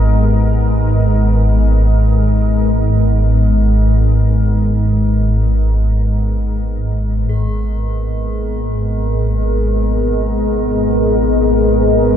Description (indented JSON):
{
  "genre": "dark ambient drone",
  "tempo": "free time",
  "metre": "none",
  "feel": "none",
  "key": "G# harmonic minor",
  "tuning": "A4 = 445 Hz",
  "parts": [
    { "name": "deep dark ambient pad", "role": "sustained chords", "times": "0.0-12.2 s", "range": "G#3 to D#5", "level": "-18 LUFS", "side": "left 1 dB", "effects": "chorus, built-in reverb" },
    { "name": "dark detuned synth bell", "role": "arpeggios", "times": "0.0-7.3 s", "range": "none", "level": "barely audible", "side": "none", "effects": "none" },
    { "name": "deep rumbling drone", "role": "drone", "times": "0.0-12.2 s", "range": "G#1 to G#2", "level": "-14 LUFS", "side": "equal", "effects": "built-in reverb, phaser" },
    { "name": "bronze singing bowl", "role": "texture", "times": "0.0-12.2 s", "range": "B3 to G#4", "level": "-30 LUFS", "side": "left 5 dB", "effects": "none" }
  ],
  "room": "wet cathedral reverb, RT60 5.3 s",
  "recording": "dark, warm production",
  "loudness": "-12 LUFS",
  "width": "side -10 dB against mid",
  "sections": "0.0-7.3 A section; 7.3-12.2 B section",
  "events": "fade-out on ambient pad 0.0-7.3",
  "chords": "0.0 G#madd9"
}